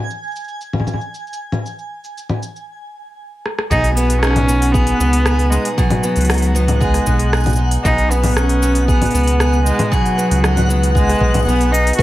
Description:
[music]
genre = folktronica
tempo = 116 BPM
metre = 4/4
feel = straight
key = B major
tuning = A4 = 440 Hz
[part]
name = twinkling granular texture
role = texture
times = 0.0-12.0 s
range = F#5 to G#5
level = -27 LUFS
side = right 1 dB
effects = built-in reverb
[part]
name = organic electronic drum kit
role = drums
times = 0.1-12.0 s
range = congas, hi-hat, rim click, shaker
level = -21 LUFS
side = left 1 dB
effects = low-pass filter on perc, low-pass filter on cymbals, low-pass filter on snare, low-pass filter on hats, low-pass filter on room
[part]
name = warm cello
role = melody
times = 3.7-12.0 s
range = F#3 to F#4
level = -18 LUFS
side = equal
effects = vintage 12-bit sampler grit, digital delay
[part]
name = picked steel-string acoustic guitar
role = arpeggios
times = 3.7-12.0 s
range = B2 to G#4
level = -21 LUFS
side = equal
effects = digital delay
[part]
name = round analog bass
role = bass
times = 3.7-12.0 s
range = A1 to C#2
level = -16 LUFS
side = equal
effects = none
[part]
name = electronic kick drum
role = drums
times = 3.7-12.0 s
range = none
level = -18 LUFS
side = equal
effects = none
[part]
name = vibraphone with medium mallets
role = second line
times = 12.0 s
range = B4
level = -14 LUFS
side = left 1 dB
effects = none
[sound]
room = light reverb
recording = none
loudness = -13 LUFS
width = side -15 dB against mid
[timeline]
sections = 0.0-3.7 A section; 3.7-12.0 B section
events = drum fill 3.5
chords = 0.0 N.C.; 3.7 B6

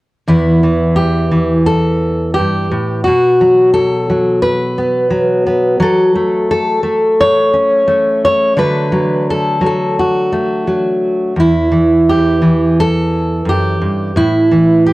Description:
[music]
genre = folk, solo fingerstyle acoustic guitar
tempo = 87 BPM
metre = 4/4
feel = straight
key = E dorian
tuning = A4 = 440 Hz
[part]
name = fingerpicked steel-string acoustic guitar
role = solo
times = 0.3-14.9 s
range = E2 to C#5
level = -10 LUFS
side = equal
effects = none
[sound]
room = light reverb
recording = worn, warbling old tape, cassette tape, warbly pitch drift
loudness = -11 LUFS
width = side -18 dB against mid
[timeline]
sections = 0.3-14.9 A section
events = none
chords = 0.3 Em; 3.1 B5; 5.8 F#m; 8.6 D; 11.4 Em; 14.2 A5

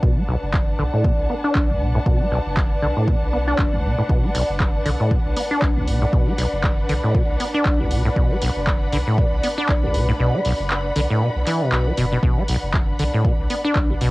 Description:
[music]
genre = acid house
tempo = 118 BPM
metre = 4/4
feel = swing 57% on 16ths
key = B minor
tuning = A4 = 440 Hz
[part]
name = dark analog pad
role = sustained chords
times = 0.0-14.1 s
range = D5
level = -28 LUFS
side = equal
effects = chorus, sidechain pumping, cassette tape
[part]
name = acid bass, saw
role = riff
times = 0.0-14.1 s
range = B1 to D4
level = -22 LUFS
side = equal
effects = tube saturation, wide subtle chorus, sidechain pumping, cassette tape
[part]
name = warm sub bass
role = bass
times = 0.0-14.1 s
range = F#1 to B1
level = -25 LUFS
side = equal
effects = sidechain pumping
[part]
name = electronic kick drum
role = drums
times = 0.0-13.9 s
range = none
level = -20 LUFS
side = equal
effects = overdrive, cassette tape
[part]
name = warm studio string section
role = texture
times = 0.0-14.1 s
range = D4 to B5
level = -29 LUFS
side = left 1 dB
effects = sidechain pumping, cassette tape
[part]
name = punchy analog drum machine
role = drums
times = 0.5-14.1 s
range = handclaps, hi-hat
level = -27 LUFS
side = equal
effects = cassette tape
[sound]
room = light reverb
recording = home recording on cassette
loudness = -17 LUFS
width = side -21 dB against mid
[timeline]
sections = 0.0-14.1 A section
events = filter sweep on acid bass 0.0-14.1; kick drops out 10.2-12.2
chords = 0.0 Bm7

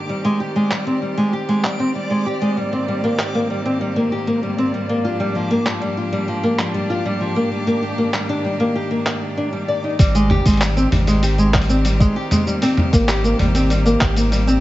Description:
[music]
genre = folktronica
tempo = 97 BPM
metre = 4/4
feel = straight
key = Ab lydian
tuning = A4 = 439 Hz
[part]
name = clear string quartet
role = sustained chords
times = 0.0-14.6 s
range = Ab2 to G4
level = -26 LUFS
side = equal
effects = none
[part]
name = backwards swelling texture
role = texture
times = 0.0-10.0 s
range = D5 to D6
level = -32 LUFS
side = right 1 dB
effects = built-in reverb
[part]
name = nylon-string guitar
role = arpeggios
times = 0.1-14.6 s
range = F3 to D5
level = -19 LUFS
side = equal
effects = ping-pong delay
[part]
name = lo-fi sampler-style drum kit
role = drums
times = 0.7-14.6 s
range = cabasa, handclaps, hi-hat, toms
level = -22 LUFS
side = equal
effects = none
[part]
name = warm sub bass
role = bass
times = 10.0-14.6 s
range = Ab1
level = -18 LUFS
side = equal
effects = none
[part]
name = electronic kick drum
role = drums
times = 10.0-14.1 s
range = none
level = -16 LUFS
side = equal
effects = none
[sound]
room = light reverb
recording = vinyl crackle, nothing above 7.8 kHz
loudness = -16 LUFS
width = side -16 dB against mid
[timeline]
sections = 0.0-10.0 A section; 10.0-14.6 B section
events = none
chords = 0.1 Abmaj7; 2.6 Cm7/Ab; 5.0 Gm7/Ab; 7.5 Ebmaj7/Ab; 10.0 Abmaj7; 12.5 Cm7/Ab

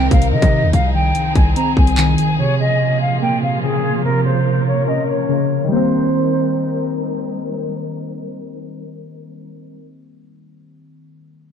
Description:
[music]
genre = hip hop, drill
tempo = 145 BPM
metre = 4/4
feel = half-time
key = C phrygian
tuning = A4 = 440 Hz
[part]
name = mellow silver concert flute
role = melody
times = 0.0-6.9 s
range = Ab4 to Bb5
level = -21 LUFS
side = equal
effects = low-pass filter, ping-pong delay
[part]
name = warbly lo-fi synth keys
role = accompaniment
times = 0.0-11.5 s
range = C2 to Db4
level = -19 LUFS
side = equal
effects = chorus, low-pass filter
[part]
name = warm symphonic string section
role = sustained chords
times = 0.0-9.8 s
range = Bb2 to Bb4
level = -25 LUFS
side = left 2 dB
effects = low-pass filter
[part]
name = hard-hitting 808-style bass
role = bass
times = 0.0-2.2 s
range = C2 to Eb3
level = -16 LUFS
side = equal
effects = none
[part]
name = drill drum kit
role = drums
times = 0.1-2.3 s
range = handclaps, hi-hat, kick drum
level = -15 LUFS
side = equal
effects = vintage 12-bit sampler grit
[sound]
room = light reverb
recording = dark, warm production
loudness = -14 LUFS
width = side -8 dB against mid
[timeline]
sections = 0.0-5.7 A section; 5.7-9.0 B section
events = filter sweep 0.0-5.7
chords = 0.0 Cm7; 0.7 Fm7/C; 2.4 Db6; 4.0 Bbm; 5.7 Cm7

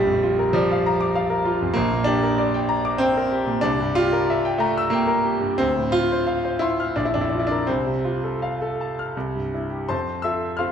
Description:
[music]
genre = classical, romantic character piece for solo piano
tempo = 79-99 BPM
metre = 3/4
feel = rubato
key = F major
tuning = A4 = 440 Hz
[part]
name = clear concert grand piano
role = solo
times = 0.0-10.7 s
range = Bb1 to F6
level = -20 LUFS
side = equal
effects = none
[sound]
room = moderate recital hall reverb, RT60 1.6 s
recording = none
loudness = -20 LUFS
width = side -8 dB against mid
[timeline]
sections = 0.0-9.9 A section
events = none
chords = 0.0 Bb; 1.8 Gm/Bb; 3.6 C7; 5.6 Dm7; 6.9 Bb5; 7.7 F/C; 9.1 C; 9.9 F

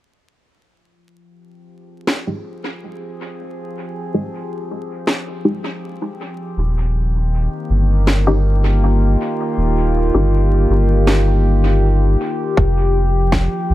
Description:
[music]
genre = ambient dub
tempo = 80 BPM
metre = 4/4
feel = straight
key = F minor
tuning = A4 = 440 Hz
[part]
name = warbly tape-like pad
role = sustained chords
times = 1.5-13.7 s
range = Eb3 to Ab4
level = -22 LUFS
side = left 1 dB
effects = chorus, built-in reverb, phaser
[part]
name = electronic snare drum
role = drums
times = 2.1-13.5 s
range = none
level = -22 LUFS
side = equal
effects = overdrive, dub echo
[part]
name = filtered dub chord stab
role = stabs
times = 2.3-10.3 s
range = Ab3 to G4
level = -22 LUFS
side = left 1 dB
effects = phaser, wide subtle chorus, vintage 12-bit sampler grit, dub echo
[part]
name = soft dub sub bass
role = bass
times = 6.6-13.7 s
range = Eb1 to Bb1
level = -15 LUFS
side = equal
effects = none
[part]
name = electronic kick drum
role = drums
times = 12.6-13.5 s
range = none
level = -16 LUFS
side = equal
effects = overdrive
[sound]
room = digital ambience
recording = echo-heavy mix, vinyl crackle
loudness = -14 LUFS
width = side -15 dB against mid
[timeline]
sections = 0.6-12.6 A section; 12.6-13.7 B section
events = fade-in on ambient pad 0.6-12.6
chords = 0.6 Fm9; 6.6 Eb; 12.6 Fmadd9

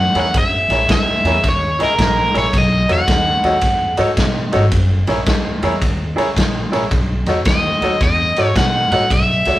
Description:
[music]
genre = electric blues shuffle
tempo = 110 BPM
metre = 4/4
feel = swing 65% on 8ths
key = unclear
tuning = A4 = 440 Hz
[part]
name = cranked stack guitar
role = melody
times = 0.0-4.0, 7.5-9.6 s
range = A#4 to F#5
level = -16 LUFS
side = equal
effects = overdrive
[part]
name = upright bass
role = bass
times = 0.0-9.6 s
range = F#1 to B2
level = -20 LUFS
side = equal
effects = none
[part]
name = raw garage drum kit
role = drums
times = 0.1-9.5 s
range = kick drum, ride cymbal, snare drum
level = -18 LUFS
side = equal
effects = none
[part]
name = bright upright piano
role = accompaniment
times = 0.2-9.6 s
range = D4 to D#5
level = -20 LUFS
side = equal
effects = none
[sound]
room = moderate stone room reverb, RT60 1.0 s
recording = rough rehearsal-room recording, tube saturation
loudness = -13 LUFS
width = side -15 dB against mid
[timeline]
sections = 0.0-9.6 A section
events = none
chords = 0.0 F#7; 2.5 B7; 4.7 F#7; 6.9 B7

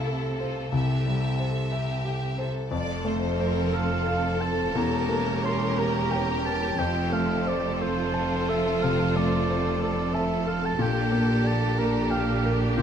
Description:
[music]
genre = classical, romantic movement for piano and orchestra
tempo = 60 BPM (dotted quarters)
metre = 12/8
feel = rubato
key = F major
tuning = A4 = 440 Hz
[part]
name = clear chamber violin section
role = melody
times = 0.0-12.8 s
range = G4 to E5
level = -35 LUFS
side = right 2 dB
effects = none
[part]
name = clear grand piano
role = melody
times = 0.0-12.8 s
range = C2 to A5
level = -28 LUFS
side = left 2 dB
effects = none
[part]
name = clear chamber violin section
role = second line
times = 0.0-12.8 s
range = E4 to D5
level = -34 LUFS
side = left 3 dB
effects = none
[part]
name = rich chamber viola section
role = accompaniment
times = 0.0-12.8 s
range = C4 to A4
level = -34 LUFS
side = right 1 dB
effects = none
[part]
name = rich studio cello section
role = bass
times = 0.0-12.8 s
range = E2 to C3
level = -30 LUFS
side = right 3 dB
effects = none
[part]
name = mellow French horn section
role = sustained chords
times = 2.7-12.8 s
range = C4 to A4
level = -33 LUFS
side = left 2 dB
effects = none
[part]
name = rich studio double bass section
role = bass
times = 2.7-12.8 s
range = E1 to Bb1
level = -32 LUFS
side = right 2 dB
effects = none
[part]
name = mellow oboe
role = second line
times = 3.7-12.8 s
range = C5 to C6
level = -32 LUFS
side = right 3 dB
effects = none
[sound]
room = light reverb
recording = close, detailed microphones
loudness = -23 LUFS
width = side -8 dB against mid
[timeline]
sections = 0.0-2.7 A section; 2.7-12.8 B section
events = none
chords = 0.0 F/C; 2.7 F; 4.8 Edim7; 6.8 F; 10.8 Gm/Bb

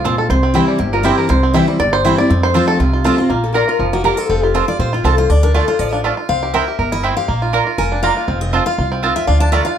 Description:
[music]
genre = bluegrass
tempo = 241 BPM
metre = 4/4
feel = swing 54% on 8ths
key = F major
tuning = A4 = 440 Hz
[part]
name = bluegrass banjo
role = melody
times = 0.0-9.8 s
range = F3 to E5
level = -19 LUFS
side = right 3 dB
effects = plate reverb
[part]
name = picked steel-string acoustic guitar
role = accompaniment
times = 0.0-9.8 s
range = F2 to Bb5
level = -18 LUFS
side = left 3 dB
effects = none
[part]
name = mandolin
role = stabs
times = 0.0-9.6 s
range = A3 to Bb5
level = -19 LUFS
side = right 6 dB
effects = none
[part]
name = upright bass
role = bass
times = 0.0-9.6 s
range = F1 to F2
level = -18 LUFS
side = equal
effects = none
[part]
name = lap resonator guitar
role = second line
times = 0.6-1.2, 3.3-3.9 s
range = E4 to Bb4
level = -21 LUFS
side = left 6 dB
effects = none
[sound]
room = light reverb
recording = dark, warm production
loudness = -13 LUFS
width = side -9 dB against mid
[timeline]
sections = 0.0-3.3 A section; 3.3-9.8 A section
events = five-string banjo solo 0.0-3.3; steel-string acoustic guitar solo 3.3-9.8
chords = 0.3 C; 2.3 F; 3.3 Bb; 4.3 F; 5.3 Dm; 6.3 C; 7.3 Bb; 8.3 F; 9.3 Dm

